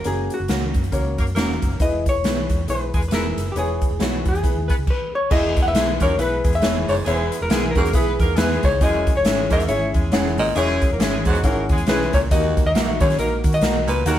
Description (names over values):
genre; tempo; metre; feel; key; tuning
uptempo 1960s-style soul; 137 BPM; 4/4; swing 59% on 8ths; unclear; A4 = 440 Hz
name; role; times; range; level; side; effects
vintage hollow-body jazz guitar; melody; 0.0-14.2 s; F#4 to F#5; -23 LUFS; left 2 dB; none
mellow horn section; second line; 0.0-14.2 s; F#3 to E5; -28 LUFS; equal; none
dark upright piano; accompaniment; 0.0-14.2 s; D#3 to G#5; -27 LUFS; left 3 dB; none
vintage muted fingered electric bass; bass; 0.0-14.2 s; E1 to D#3; -25 LUFS; equal; none
swinging big-band drum kit; drums; 0.0-14.2 s; crash cymbal, hi-hat, kick drum, snare drum; -21 LUFS; equal; none
clean electric guitar; stabs; 0.5-13.8 s; G#3 to B4; -30 LUFS; right 8 dB; spring reverb
growling baritone saxophone; riff; 5.3-14.2 s; D#2 to A#2; -27 LUFS; right 5 dB; none
room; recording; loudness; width
light reverb; band playing live in one room; -17 LUFS; side -12 dB against mid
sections
0.0-5.3 A section; 5.3-14.2 B section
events
none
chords
0.0 F#; 1.8 E; 8.8 C#m/E; 12.3 D#m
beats
| 0.05 0.49 0.93 1.36 | 1.80 2.24 2.68 3.12 | 3.56 4.00 4.43 4.87 | 5.31 5.75 6.19 6.62 | 7.06 7.50 7.94 8.37 | 8.81 9.25 9.69 10.12 | 10.56 11.00 11.44 11.88 | 12.31 12.75 13.19 13.63 | 14.06